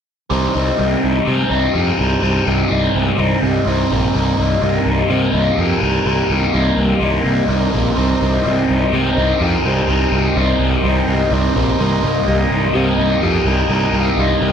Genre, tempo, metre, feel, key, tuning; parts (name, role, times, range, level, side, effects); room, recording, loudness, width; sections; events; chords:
rock; 126 BPM; 4/4; straight; C minor; A4 = 440 Hz
biting overdriven guitar; riff; 0.3-14.5 s; C3 to Eb4; -16 LUFS; left 1 dB; phaser
fuzz picked electric bass; bass; 0.3-14.5 s; Bb1 to C3; -18 LUFS; equal; overdrive
deep rumbling drone; drone; 1.2-14.5 s; C2 to G2; -24 LUFS; right 1 dB; built-in reverb, lush chorus
combo organ; sustained chords; 8.0-14.5 s; Eb4 to Eb5; -25 LUFS; right 4 dB
light reverb; -14 LUFS; side -8 dB against mid
0.3-14.5 A section
0.3 Cm7